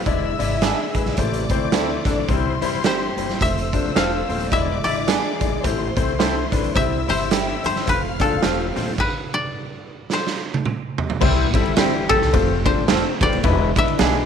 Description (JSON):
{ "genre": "uptempo 1960s-style soul", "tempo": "108 BPM", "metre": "4/4", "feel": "swing 59% on 8ths", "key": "C major", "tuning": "A4 = 440 Hz", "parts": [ { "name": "koto", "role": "melody", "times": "0.0-14.3 s", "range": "A4 to F5", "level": "-24 LUFS", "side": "left 2 dB", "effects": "none" }, { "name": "rich studio string section", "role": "second line", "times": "0.0-9.0 s", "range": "C5 to F6", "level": "-30 LUFS", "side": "left 2 dB", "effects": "none" }, { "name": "tonewheel organ", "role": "sustained chords", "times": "0.0-14.3 s", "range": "E3 to D4", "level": "-32 LUFS", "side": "right 12 dB", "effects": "slow rotary speaker, overdrive, chorus vibrato" }, { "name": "bright upright piano", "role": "accompaniment", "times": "0.1-14.2 s", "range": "G3 to E5", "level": "-25 LUFS", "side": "left 12 dB", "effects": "none" }, { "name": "electric guitar through a small old amp", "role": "riff", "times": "0.1-14.3 s", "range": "C4 to G#4", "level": "-29 LUFS", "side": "left 10 dB", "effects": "none" }, { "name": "upright bass", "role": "bass", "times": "0.1-14.3 s", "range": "Eb1 to D2", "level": "-26 LUFS", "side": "equal", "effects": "none" }, { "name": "raw garage drum kit", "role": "drums", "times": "0.1-14.1 s", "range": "crash cymbal, hi-hat, kick drum, ride cymbal, snare drum, toms", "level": "-22 LUFS", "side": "right 3 dB", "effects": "none" }, { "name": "electric guitar through a small old amp", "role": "stabs", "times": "0.6-14.1 s", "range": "G3 to A4", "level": "-28 LUFS", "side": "right 11 dB", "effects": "none" } ], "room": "light reverb, small room ambience", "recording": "1960s-style stereo with parts hard left and right, lossy compression artefacts", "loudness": "-18 LUFS", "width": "side -7 dB against mid", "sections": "0.0-11.2 A section; 11.2-14.3 B section", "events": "stop 9.0-11.2; drum fill 10.1-11.2", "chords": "0.1 E7; 1.2 Am; 2.3 C; 3.4 F; 4.5 E7; 5.6 Am; 6.8 C; 7.9 F; 9.0 N.C.; 11.2 C; 12.3 F; 13.4 E7" }